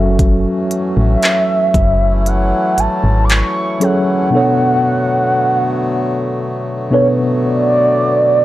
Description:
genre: contemporary R&B.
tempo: 58 BPM.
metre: 4/4.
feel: straight.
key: unclear.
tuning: A4 = 442 Hz.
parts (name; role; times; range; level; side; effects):
mellow tine electric piano; accompaniment; 0.0-8.4 s; B2 to E5; -17 LUFS; equal; medium stereo tremolo.
hand-pumped harmonium; sustained chords; 0.0-8.4 s; D3 to F#4; -21 LUFS; left 1 dB; sidechain pumping.
solid FM bass; bass; 0.0-3.4 s; F#1 to A1; -15 LUFS; equal; none.
trap drum kit; drums; 0.2-4.1 s; handclaps, hi-hat, kick drum; -15 LUFS; equal; overdrive.
mellow horn-like synth lead; melody; 0.7-8.4 s; C#5 to D6; -16 LUFS; right 1 dB; chorus, phaser.
room: little or no reverb.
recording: dry, gritty hardware recording.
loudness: -12 LUFS.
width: side -15 dB against mid.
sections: 0.0-8.4 A section.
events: none.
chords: 0.0 F#m7; 4.3 Bm7.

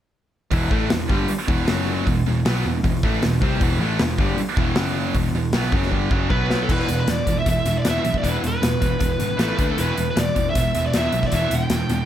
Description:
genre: hard rock.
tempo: 155 BPM.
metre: 4/4.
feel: straight.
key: E minor.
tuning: A4 = 439 Hz.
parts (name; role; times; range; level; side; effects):
crunchy overdriven guitar; riff; 0.5-12.1 s; E2 to D4; -26 LUFS; left 6 dB; spring reverb.
scooped high-gain guitar; riff; 0.5-12.1 s; E2 to D4; -25 LUFS; right 7 dB; distortion.
picked electric bass; bass; 0.5-12.0 s; E1 to D2; -25 LUFS; equal; none.
big rock drum kit; drums; 0.5-12.0 s; crash cymbal, hi-hat, kick drum, snare drum; -23 LUFS; equal; none.
bluesy overdriven lead guitar; melody; 6.3-12.1 s; A4 to G5; -24 LUFS; equal; distortion, slapback echo, plate reverb.
room: light reverb.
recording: none.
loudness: -18 LUFS.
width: side -11 dB against mid.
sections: 0.5-6.7 A section; 6.7-12.1 B section.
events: drum fill 5.9-6.7.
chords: 0.5 Em; 1.7 F#5; 2.1 Em; 4.8 F#5; 5.2 Em; 6.3 B5; 6.7 E5; 9.4 A5; 9.6 D5; 9.8 Em.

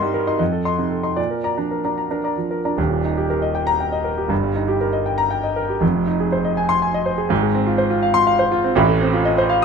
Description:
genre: classical, virtuoso piano study.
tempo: 72-84 BPM (dotted quarters).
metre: 6/8.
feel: rubato.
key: Eb major.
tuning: A4 = 441 Hz.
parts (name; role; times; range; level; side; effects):
clear concert grand piano; solo; 0.0-9.6 s; Eb1 to C6; -17 LUFS; equal; none.
room: light reverb.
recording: minimal, uncompressed stereo recording.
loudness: -17 LUFS.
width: side -6 dB against mid.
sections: 0.0-2.8 A section; 2.8-9.6 B section.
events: none.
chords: 0.4 F7; 1.2 Bb; 2.8 Eb; 4.3 Eb/G; 5.8 Fm7; 7.3 Fm/Ab; 8.8 F7/A.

